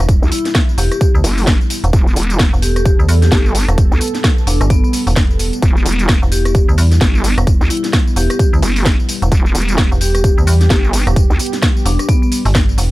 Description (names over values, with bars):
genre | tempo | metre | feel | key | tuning
bass house | 130 BPM | 4/4 | swing 59% on 16ths | E minor | A4 = 440 Hz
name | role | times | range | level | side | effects
dark analog pad | sustained chords | 0.0-12.9 s | G3 to A4 | -23 LUFS | right 1 dB | chorus, sidechain pumping
metallic FM bass | bass | 0.0-12.9 s | E1 to E2 | -14 LUFS | equal | sidechain pumping
garage drum kit | drums | 0.0-12.9 s | hi-hat, rim click, snare drum, tambourine | -20 LUFS | equal | none
electronic kick drum | drums | 0.1-12.7 s | none | -13 LUFS | equal | none
vowel-sweep wobble bass | bass | 0.2-11.4 s | E1 to D2 | -16 LUFS | equal | chorus, tube saturation, sidechain pumping
vibraphone with medium hard mallets | melody | 0.3-12.3 s | B3 to G4 | -23 LUFS | left 3 dB | ping-pong delay
room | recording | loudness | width
little or no reverb | none | -11 LUFS | side -18 dB against mid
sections
0.0-12.9 A section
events
none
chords
0.0 Em